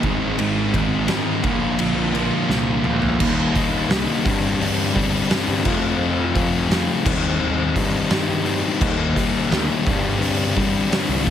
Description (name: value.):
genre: quiet-loud alternative rock.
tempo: 86 BPM.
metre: 4/4.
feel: straight.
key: unclear.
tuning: A4 = 440 Hz.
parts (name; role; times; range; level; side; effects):
thick fuzz guitar; riff; 0.0-11.3 s; G2 to F4; -21 LUFS; left 5 dB; distortion.
thick fuzz guitar; riff; 0.0-3.2 s; Ab2 to Bb3; -24 LUFS; right 10 dB; distortion.
fuzz picked electric bass; bass; 0.0-11.3 s; Ab1 to G3; -25 LUFS; right 1 dB; overdrive.
oversized low-tuned drum kit; drums; 0.0-11.3 s; crash cymbal, hi-hat, kick drum, ride cymbal, snare drum, toms; -23 LUFS; right 1 dB; none.
room: light reverb, studio reverb.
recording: heavily compressed radio sound.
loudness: -18 LUFS.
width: side -10 dB against mid.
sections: 0.0-3.2 A section; 3.2-11.3 B section.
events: drum fill 2.5-3.2.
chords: 0.0 Ab; 1.4 Bb; 3.2 Eb; 4.3 Gsus4; 5.7 F; 7.1 Cm/Eb; 8.8 Eb; 9.9 Gsus4.